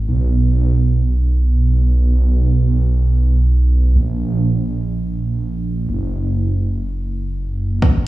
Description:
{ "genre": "melodic techno", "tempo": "free time", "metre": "none", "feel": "none", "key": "G# minor", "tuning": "A4 = 440 Hz", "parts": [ { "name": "dark detuned saw bass", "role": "bass", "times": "0.0-7.8 s", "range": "F#1 to B1", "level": "-15 LUFS", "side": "right 1 dB", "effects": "sidechain pumping" }, { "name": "electronic kick drum", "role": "drums", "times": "7.8-7.9 s", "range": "none", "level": "-12 LUFS", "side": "equal", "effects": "overdrive, studio ambience" } ], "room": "little or no reverb", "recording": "played on a big sound system in a bare room, stone room reverb", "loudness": "-15 LUFS", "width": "side -16 dB against mid", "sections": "0.0-7.8 A section", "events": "none", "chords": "none" }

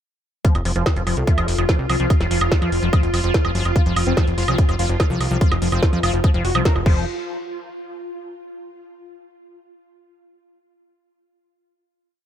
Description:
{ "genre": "psychedelic trance", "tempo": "145 BPM", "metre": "4/4", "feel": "straight", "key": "F major", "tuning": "A4 = 438 Hz", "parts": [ { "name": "swarming drone", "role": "sustained chords", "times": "1.1-6.9 s", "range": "F4", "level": "-28 LUFS", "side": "equal", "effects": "built-in reverb, sidechain pumping" }, { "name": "liquid acid bass", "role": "riff", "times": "0.4-7.1 s", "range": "F3 to F4", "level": "-28 LUFS", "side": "moving between left 6 dB and right 4 dB", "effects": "chorus, auto-pan, sidechain pumping, dub echo" }, { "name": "drum and bass drum kit", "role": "drums", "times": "0.4-6.9 s", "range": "crash cymbal, hi-hat, snare drum, woodblock", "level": "-25 LUFS", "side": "right 2 dB", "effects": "none" }, { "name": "electronic kick drum", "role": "drums", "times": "0.4-6.9 s", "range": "none", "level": "-17 LUFS", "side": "equal", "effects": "none" }, { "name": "plucky analog bass", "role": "bass", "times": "0.6-7.1 s", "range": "F1 to F2", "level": "-22 LUFS", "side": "equal", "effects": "none" }, { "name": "vowel-sweep wobble bass", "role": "second line", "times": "0.8-6.1 s", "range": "F3 to C4", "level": "-34 LUFS", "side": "right 5 dB", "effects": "none" }, { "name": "wide unison lead", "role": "melody", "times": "3.8-7.0 s", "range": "F3 to C5", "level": "-28 LUFS", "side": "left 2 dB", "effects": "phaser, sidechain pumping, dub echo" } ], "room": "little or no reverb", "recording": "none", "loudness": "-16 LUFS", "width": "side -10 dB against mid", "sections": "0.4-7.1 drop; 7.1-8.7 final hit", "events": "drop 0.4-7.1; band accent 6.7", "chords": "0.4 F5; 7.1 N.C." }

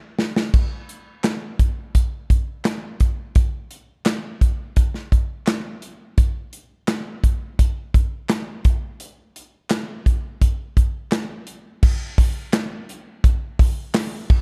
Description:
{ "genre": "pop", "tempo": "85 BPM", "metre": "4/4", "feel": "straight", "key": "none", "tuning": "none", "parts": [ { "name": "modern studio drum kit", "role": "drums", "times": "0.2-14.4 s", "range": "crash cymbal, handclaps, hi-hat, kick drum, snare drum", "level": "-20 LUFS", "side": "equal", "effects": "none" }, { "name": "group handclap", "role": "percussion", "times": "1.2-14.1 s", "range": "none", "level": "-39 LUFS", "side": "equal", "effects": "none" } ], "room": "little or no reverb", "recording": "dark, warm production", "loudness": "-21 LUFS", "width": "mono", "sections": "0.0-11.8 A section; 11.8-14.4 B section", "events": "drum fill 0.0-0.5", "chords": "none" }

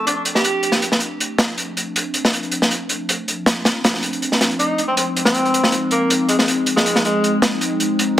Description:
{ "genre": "drum and bass, jungle", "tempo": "159 BPM", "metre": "4/4", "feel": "straight", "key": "D minor", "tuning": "A4 = 440 Hz", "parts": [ { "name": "warm tenor saxophone", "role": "melody", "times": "0.0-0.9, 4.6-7.3 s", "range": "Ab3 to G4", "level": "-21 LUFS", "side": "equal", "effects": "vintage 12-bit sampler grit, dub echo" }, { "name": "warbly tape-like pad", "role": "sustained chords", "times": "0.0-8.2 s", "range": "F3 to Eb4", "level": "-23 LUFS", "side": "left 1 dB", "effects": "chorus, built-in reverb" }, { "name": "crunchy breakbeat drum kit", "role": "drums", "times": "0.1-8.2 s", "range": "hi-hat, snare drum", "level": "-17 LUFS", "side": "equal", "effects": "high-pass filter on kick, high-pass filter on hats, high-pass filter on snare, high-pass filter on room" } ], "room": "moderate plate reverb, RT60 1.2 s, small room ambience", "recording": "heavily compressed radio sound", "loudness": "-16 LUFS", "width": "side -12 dB against mid", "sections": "0.0-8.2 A section", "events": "none", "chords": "0.0 Dm7; 4.6 Fm7" }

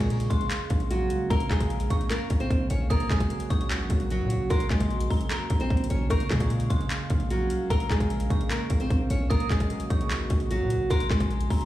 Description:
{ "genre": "hip hop, trap", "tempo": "150 BPM", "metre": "4/4", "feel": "half-time", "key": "Bb minor", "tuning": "A4 = 441 Hz", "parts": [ { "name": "nylon-string guitar", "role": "melody", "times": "0.0-11.7 s", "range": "Gb3 to Db5", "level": "-30 LUFS", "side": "right 1 dB", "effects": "ping-pong delay" }, { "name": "dark detuned synth bell", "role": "second line", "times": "0.0-11.7 s", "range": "Bb5 to Eb6", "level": "-37 LUFS", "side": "left 1 dB", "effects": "chorus, phaser, ping-pong delay" }, { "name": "dark analog pad", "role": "sustained chords", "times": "0.0-11.7 s", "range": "Db3 to F5", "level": "-34 LUFS", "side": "right 2 dB", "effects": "chorus" }, { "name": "distorted 808-style bass", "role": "bass", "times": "0.0-11.7 s", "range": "Bb1 to Bb2", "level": "-28 LUFS", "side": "equal", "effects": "distortion" }, { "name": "trap drum kit", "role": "drums", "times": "0.0-11.7 s", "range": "handclaps, hi-hat, kick drum", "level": "-27 LUFS", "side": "equal", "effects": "none" } ], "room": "little or no reverb", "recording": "played on a big sound system in a bare room, large studio reverb", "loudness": "-23 LUFS", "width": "side -14 dB against mid", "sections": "0.0-11.7 A section", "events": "none", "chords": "0.0 Bbm7; 2.9 Gb/Bb; 6.1 Bbm7; 9.3 Gb/Bb" }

